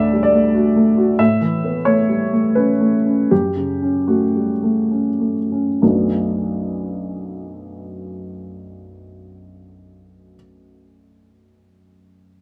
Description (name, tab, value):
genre	neoclassical minimalist piano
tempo	65-93 BPM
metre	3/4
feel	rubato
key	B minor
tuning	A4 = 441 Hz
part	warm upright piano	solo	0.0-12.4 s	B1 to E5	-18 LUFS	equal	none
room	light reverb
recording	band playing live in one room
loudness	-17 LUFS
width	mono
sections	0.0-5.8 A section; 5.8-11.3 B section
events	slowing down 0.2-5.8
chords	0.0 D; 1.2 Aadd9; 3.3 F#m; 5.8 Bm7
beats	0.54 | 1.19 1.86 2.56 | 3.30 4.08 4.91 | 5.81 6.72 7.62 | 8.52 9.43 10.34